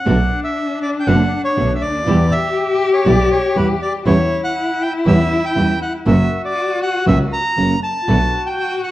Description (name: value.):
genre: tango.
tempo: 120 BPM.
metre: 4/4.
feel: rubato.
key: B minor.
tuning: A4 = 440 Hz.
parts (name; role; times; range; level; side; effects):
bandoneon; melody; 0.0-8.9 s; B4 to A#5; -20 LUFS; equal; plate reverb.
warm cello; second line; 0.0-8.9 s; D4 to G4; -20 LUFS; left 3 dB; none.
nylon-string guitar; accompaniment; 0.1-8.2 s; B2 to F#4; -19 LUFS; right 2 dB; none.
muted studio string section; stabs; 0.1-8.3 s; B3 to B4; -28 LUFS; right 2 dB; none.
clear double bass; bass; 0.1-8.3 s; F#1 to E2; -18 LUFS; right 1 dB; none.
room: moderate large studio reverb, RT60 1.0 s.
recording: worn, warbling old tape, cassette tape, warbly pitch drift.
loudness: -14 LUFS.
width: side -15 dB against mid.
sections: 0.1-8.9 A section.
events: none.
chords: 0.1 Bm7; 2.1 Em; 4.1 C#dim/E; 6.1 F#; 8.1 Bm7.